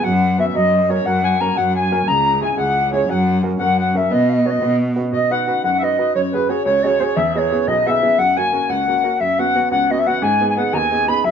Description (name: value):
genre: celtic folk, Celtic jig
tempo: 118 BPM (dotted quarters)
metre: 6/8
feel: straight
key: unclear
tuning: A4 = 440 Hz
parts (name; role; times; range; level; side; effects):
- mellow hollow wooden flute; melody; 0.0-11.3 s; B4 to B5; -18 LUFS; equal; plate reverb
- accordion; second line; 0.0-11.3 s; B4 to B5; -23 LUFS; left 6 dB; none
- clear upright piano; accompaniment; 0.0-11.3 s; B1 to D#5; -22 LUFS; right 2 dB; none
- rich cello; bass; 0.0-5.0 s; C#2 to B2; -20 LUFS; equal; none
room: moderate studio reverb, RT60 0.6 s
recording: nothing above 7.7 kHz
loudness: -15 LUFS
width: side -7 dB against mid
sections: 0.0-5.1 A section; 5.1-11.3 B section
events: none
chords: 0.0 F#sus4; 0.5 F#; 2.1 C#m; 3.1 F#; 4.1 B; 6.2 F#sus2; 7.2 E; 8.2 F#; 9.2 F#sus4; 10.2 G#m